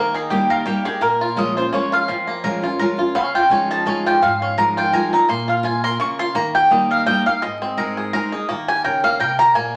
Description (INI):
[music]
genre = bluegrass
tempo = 169 BPM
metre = 3/4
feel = swing 55% on 8ths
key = unclear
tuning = A4 = 440 Hz
[part]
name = bluegrass banjo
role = melody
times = 0.0-9.8 s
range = F3 to Bb4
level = -26 LUFS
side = equal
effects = none
[part]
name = picked steel-string acoustic guitar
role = accompaniment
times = 0.0-9.8 s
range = F2 to Ab4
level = -26 LUFS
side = equal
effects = none
[part]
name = mandolin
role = stabs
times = 0.0-9.7 s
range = F4 to Db6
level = -20 LUFS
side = equal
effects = none
[sound]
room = wet small room reverb, RT60 0.6 s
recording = vinyl crackle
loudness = -19 LUFS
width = mono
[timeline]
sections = 0.0-9.8 A section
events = mandolin solo 0.0-9.8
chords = 0.0 Eb; 1.0 Bbm7; 3.2 Dbadd9; 5.3 Bbm; 6.4 Eb; 7.4 Ab; 8.5 Eb